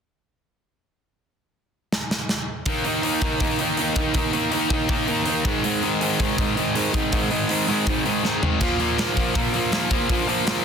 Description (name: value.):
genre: punk rock.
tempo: 161 BPM.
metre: 4/4.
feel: straight.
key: unclear.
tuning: A4 = 442 Hz.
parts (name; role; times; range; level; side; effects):
tight metal drum kit; drums; 1.9-10.6 s; hi-hat, kick drum, snare drum, splash cymbal, toms; -25 LUFS; equal; none.
distorted electric guitar; riff; 2.7-10.6 s; Ab2 to Eb4; -24 LUFS; left 12 dB; overdrive.
distorted electric guitar; riff; 2.7-10.6 s; Ab2 to Eb4; -24 LUFS; right 10 dB; distortion.
room: light reverb.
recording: dense, heavily limited modern master.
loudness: -20 LUFS.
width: side -7 dB against mid.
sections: 1.2-2.7 A section; 2.7-10.6 B section.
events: drum fill 1.9-2.7, 8.2-8.6.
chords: 1.2 N.C.; 2.7 Eb5; 5.5 Ab5; 8.6 Bb5.